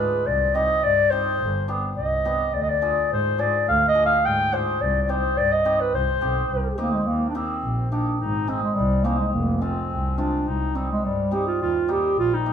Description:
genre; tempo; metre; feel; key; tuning
klezmer; 106 BPM; 2/4; straight; C harmonic minor, Eb major from 7.1 s; A4 = 441 Hz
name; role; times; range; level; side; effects
dark clarinet; melody; 0.0-12.5 s; G3 to G5; -22 LUFS; equal; none
hammered dulcimer; accompaniment; 0.0-12.5 s; G3 to Ab4; -29 LUFS; equal; none
warm double bass; bass; 0.0-12.5 s; F1 to Ab2; -26 LUFS; equal; none
room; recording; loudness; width
moderate stone room reverb, RT60 1.1 s; band playing live in one room; -20 LUFS; side -8 dB against mid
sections
0.0-7.1 A section; 7.1-12.5 B section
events
none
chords
0.3 Cm; 1.4 G; 2.5 Ddim; 4.8 Cm; 7.1 Eb; 8.2 Ab; 9.3 Fm; 10.5 Cm; 11.6 Eb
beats
| 0.26 0.83 | 1.40 1.97 | 2.53 3.10 | 3.67 4.23 | 4.80 5.37 | 5.93 6.50 | 7.07 7.63 | 8.20 8.77 | 9.34 9.90 | 10.47 11.04 | 11.61 12.17

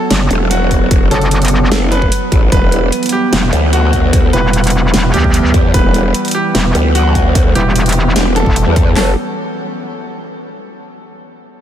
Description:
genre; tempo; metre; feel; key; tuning
heavy wobble dubstep; 149 BPM; 4/4; half-time; F# phrygian; A4 = 440 Hz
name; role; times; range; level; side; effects
bright baby grand piano; melody; 0.0-9.1 s; F#4 to B4; -20 LUFS; equal; ping-pong delay
evolving wavetable pad; sustained chords; 0.0-9.2 s; E3 to A4; -18 LUFS; right 2 dB; chorus, built-in reverb, sidechain pumping
metallic wobble bass; bass; 0.1-8.6 s; E1 to D2; -12 LUFS; equal; chorus, overdrive
dubstep drum kit; drums; 0.1-8.8 s; hi-hat, snare drum; -20 LUFS; right 1 dB; studio reverb
growl bass; bass; 0.3-9.2 s; E1 to E2; -13 LUFS; equal; chorus, overdrive
dubstep drum kit; drums; 0.7-9.1 s; hi-hat, kick drum, snare drum; -13 LUFS; equal; studio reverb
mellow brass ensemble; stabs; 1.1-9.1 s; E4 to C#5; -29 LUFS; left 2 dB; none
room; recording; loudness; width
light reverb; none; -10 LUFS; side -10 dB against mid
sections
0.0-9.0 A section; 9.0-10.6 B section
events
drop 0.0-9.0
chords
0.0 F#m; 2.5 Em; 9.0 F#m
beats
0.10 0.51 | 0.91 1.31 1.72 2.12 | 2.52 2.92 3.33 3.73 | 4.13 4.53 4.94 5.34 | 5.74 6.14 6.55 6.95 | 7.35 7.76 8.16 8.56 | 8.96

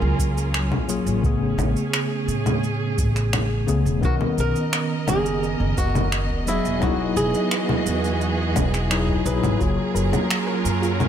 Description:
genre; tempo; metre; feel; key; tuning
sunset chillout; 86 BPM; 4/4; straight; F# major; A4 = 440 Hz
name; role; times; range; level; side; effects
tine electric piano; accompaniment; 0.0-11.1 s; C#3 to D#5; -25 LUFS; moving between left 6 dB and right 7 dB; medium tremolo, auto-pan, digital delay
dark studio string section; sustained chords; 0.0-11.1 s; E3 to D#5; -28 LUFS; right 2 dB; none
upright bass; bass; 0.0-11.1 s; E1 to A2; -24 LUFS; equal; none
electronic kick drum; drums; 0.2-9.7 s; none; -25 LUFS; equal; none
electronic shaker, finger snaps and congas; drums; 0.2-11.1 s; none; -26 LUFS; left 1 dB; overdrive
flamenco guitar; melody; 4.0-9.6 s; E4 to B4; -28 LUFS; right 1 dB; digital delay
soft round pluck; arpeggios; 9.6-10.9 s; E#4 to A#4; -32 LUFS; equal; chorus, digital delay
room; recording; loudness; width
light reverb, small room ambience; none; -19 LUFS; side -9 dB against mid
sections
0.0-11.1 A section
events
none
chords
0.0 F#maj9; 1.2 Amaj9; 4.0 Bmaj9; 6.5 Emaj9; 9.6 F#maj9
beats
0.54 | 1.24 1.93 2.63 3.33 | 4.03 4.72 5.42 6.12 | 6.82 7.51 8.21 8.91 | 9.61 10.30 11.00

